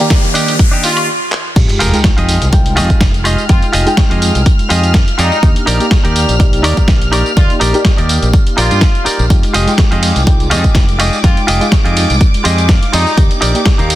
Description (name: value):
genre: filtered disco house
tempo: 124 BPM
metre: 4/4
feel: swing 54% on 16ths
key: F dorian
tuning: A4 = 440 Hz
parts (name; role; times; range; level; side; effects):
- mellow reed electric piano; accompaniment; 0.0-14.0 s; Eb3 to G5; -19 LUFS; equal; fast tremolo, phaser, vintage 12-bit sampler grit, sidechain pumping
- string machine, full ensemble; sustained chords; 0.0-14.0 s; D6 to F6; -23 LUFS; equal; ensemble chorus, sidechain pumping
- dusty soul sampler-style drum kit; drums; 0.0-14.0 s; crash cymbal, handclaps, hi-hat, ride cymbal, snare drum, tambourine, woodblock; -18 LUFS; equal; sidechain pumping on hats, sidechain pumping on perc, sidechain pumping on cymbals
- riser and sub drop; sound effects; 0.0-3.5 s; none; -20 LUFS; left 1 dB; none
- electronic kick drum; drums; 0.1-13.8 s; none; -10 LUFS; equal; none
- modern bright fingered electric bass; bass; 0.2-14.0 s; F1 to G2; -15 LUFS; equal; sidechain pumping, high-pass filter
- direct-recorded clean electric guitar; riff; 0.3-14.0 s; D4 to Ab5; -19 LUFS; right 1 dB; vintage 12-bit sampler grit, sidechain pumping
- brilliant horn section; melody; 0.8-13.2 s; Eb4 to F4; -21 LUFS; equal; sidechain pumping, tape echo
room: digital ambience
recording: dense, heavily limited modern master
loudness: -9 LUFS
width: side -14 dB against mid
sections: 0.0-1.6 A section; 1.6-14.0 B section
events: build-up 0.0-1.6; riser 0.0-1.1; filter sweep 0.0-1.6; stop 1.1-1.6; drum fill 1.3; drop 1.6-14.0; impact 1.6-3.5; clean electric guitar fill 12.2-13.2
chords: 0.0 Ebmaj7; 1.6 Fm9; 5.4 Ebmaj7; 9.3 Fm9; 13.2 Ebmaj7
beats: 0.11 0.59 1.08 | 1.56 2.04 2.53 3.01 | 3.50 3.98 4.46 4.95 | 5.43 5.92 6.40 6.88 | 7.37 7.85 8.34 8.82 | 9.30 9.79 10.27 10.75 | 11.24 11.72 12.21 12.69 | 13.17 13.66